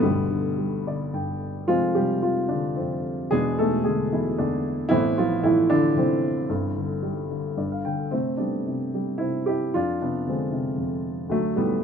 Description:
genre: classical, lyrical solo piano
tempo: 106-118 BPM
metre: 3/4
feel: rubato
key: C major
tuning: A4 = 439 Hz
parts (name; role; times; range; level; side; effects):
- dark upright piano; solo; 0.0-11.8 s; E1 to G5; -22 LUFS; equal; none
room: light reverb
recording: minimal, uncompressed stereo recording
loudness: -22 LUFS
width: side -7 dB against mid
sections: 0.0-8.1 A section; 8.1-11.8 B section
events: upright piano fill 0.6-1.7, 7.3-8.1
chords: 0.0 G; 1.7 Fm; 3.3 E7; 4.9 Amadd9; 6.5 Gsus4; 7.6 G5; 8.1 C6; 9.8 Fm6; 11.3 D

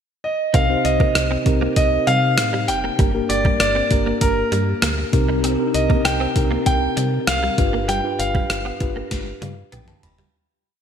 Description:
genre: 1980s-style pop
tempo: 98 BPM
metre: 4/4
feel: straight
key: C minor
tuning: A4 = 439 Hz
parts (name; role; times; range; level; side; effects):
- clear concert grand piano; melody; 0.2-10.0 s; Bb4 to G5; -22 LUFS; equal; ping-pong delay
- mellow tine electric piano; accompaniment; 0.5-10.4 s; G2 to B5; -23 LUFS; equal; medium stereo tremolo
- direct-recorded clean electric guitar; riff; 0.5-10.3 s; G3 to C4; -29 LUFS; right 3 dB; ensemble chorus, ping-pong delay
- slap-like FM bass; bass; 0.5-10.3 s; F1 to C3; -24 LUFS; equal; none
- gated 80s digital drum machine; drums; 0.5-10.3 s; hi-hat, kick drum, rim click, snare drum, toms; -21 LUFS; equal; gated reverb, gated reverb snare
room: moderate lush hall reverb, RT60 1.8 s, digital ambience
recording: bright 1980s-style digital production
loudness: -17 LUFS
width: side -8 dB against mid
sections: 0.0-0.5 pickup bar; 0.5-10.3 verse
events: fade-out 7.9-10.3; drum fill 9.1-10.3; tine electric piano fill 9.1-10.3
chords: 0.0 N.C.; 0.5 Cm7; 3.0 Gm; 5.1 Cm7; 7.6 G7

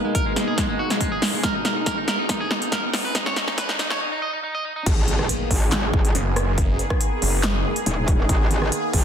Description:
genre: heavy wobble dubstep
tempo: 140 BPM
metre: 4/4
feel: half-time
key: G# minor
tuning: A4 = 440 Hz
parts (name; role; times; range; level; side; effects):
- electric guitar at the edge of break-up; melody; 0.0-4.8 s; G#3 to D#5; -26 LUFS; right 1 dB; dub echo
- supersaw pad; sustained chords; 0.0-9.0 s; B2 to G#4; -28 LUFS; equal; phaser, sidechain pumping, low-pass filter
- riser and impact; sound effects; 0.5-6.6 s; none; -33 LUFS; equal; none
- big-room dance drum kit; drums; 0.1-9.0 s; crash cymbal, handclaps, hi-hat, rim click, snare drum; -24 LUFS; equal; soft clipping on snare
- electronic kick drum; drums; 0.1-9.0 s; none; -22 LUFS; equal; none
- metallic wobble bass; bass; 4.9-9.0 s; D#1 to G#1; -23 LUFS; equal; distortion, chorus, overdrive
- snarling distorted saw bass; bass; 6.1-7.6 s; F#1; -23 LUFS; equal; distortion, overdrive
room: light reverb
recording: dense, heavily limited modern master, high-pass filter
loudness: -20 LUFS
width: side -8 dB against mid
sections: 0.0-4.9 A section; 4.9-9.0 B section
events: build-up 0.0-4.9; drum fill 0.0-4.0; filter sweep on supersaw synth 0.0-4.9; filter sweep 0.0-4.9; break 4.0-4.9; drop 4.9-9.0; impact 4.9-6.6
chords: 0.0 G#madd9

